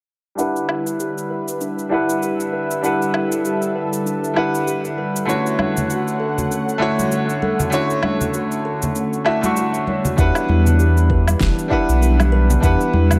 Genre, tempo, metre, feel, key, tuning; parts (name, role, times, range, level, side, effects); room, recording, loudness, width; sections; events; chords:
sunset chillout; 98 BPM; 4/4; swing 57% on 16ths; E dorian; A4 = 440 Hz
bright concert grand piano; accompaniment; 0.4-13.2 s; D3 to C#6; -24 LUFS; equal; low-pass filter, analog delay
lush unison pad; sustained chords; 0.4-13.2 s; D3 to F#5; -27 LUFS; equal; chorus
kalimba; arpeggios; 0.4-13.2 s; C#4 to D5; -28 LUFS; equal; low-pass filter, analog delay
electronic cabasa, woodblock and snare drum; drums; 0.4-13.2 s; -29 LUFS; equal; overdrive
congas; percussion; 5.6-13.2 s; -28 LUFS; equal
warm sub bass; bass; 10.2-13.2 s; E1 to E2; -17 LUFS; equal
electronic kick drum; drums; 10.2-12.8 s; -22 LUFS; equal
moderate spring reverb, RT60 1.7 s, small room ambience; echo-heavy mix; -19 LUFS; mono
0.4-10.2 A section; 10.2-13.2 B section
filter sweep on grand piano 0.4-10.2; filter sweep on kalimba 0.4-10.2
0.4 Em7; 5.3 Dmaj7; 10.2 Em7